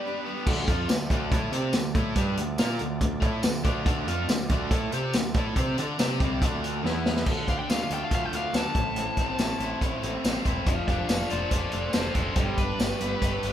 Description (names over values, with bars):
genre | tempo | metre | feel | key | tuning
classic rock | 141 BPM | 4/4 | straight | D dorian | A4 = 440 Hz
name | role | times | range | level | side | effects
nasal lead guitar with a parked wah | melody | 0.0-0.2, 7.5-13.5 s | F4 to A5 | -31 LUFS | left 2 dB | overdrive
picked steel-string acoustic guitar | accompaniment | 0.0-0.5, 7.3-13.5 s | A2 to D5 | -41 LUFS | equal | none
cranked stack guitar | riff | 0.0-13.5 s | A2 to D5 | -33 LUFS | right 6 dB | overdrive
overdriven semi-hollow guitar | riff | 0.0-13.5 s | A2 to D5 | -32 LUFS | left 5 dB | none
tonewheel organ | sustained chords | 0.5-7.3 s | A3 to E5 | -41 LUFS | right 1 dB | none
growling picked electric bass | bass | 0.5-13.5 s | E1 to D3 | -32 LUFS | right 1 dB | overdrive
vintage drum kit | drums | 0.5-13.5 s | crash cymbal, hi-hat, kick drum, snare drum, tambourine | -27 LUFS | equal | none
room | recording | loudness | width
moderate large studio reverb, RT60 1.1 s | band playing live in one room | -24 LUFS | side -10 dB against mid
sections
0.5-7.3 A section; 7.3-13.5 B section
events
break 0.0-0.5; drum fill 6.8-7.3; lead electric guitar solo 7.3-13.5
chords
0.5 Dm; 6.8 E5; 7.3 Dm; 8.8 Am; 10.7 F6; 12.4 Gadd9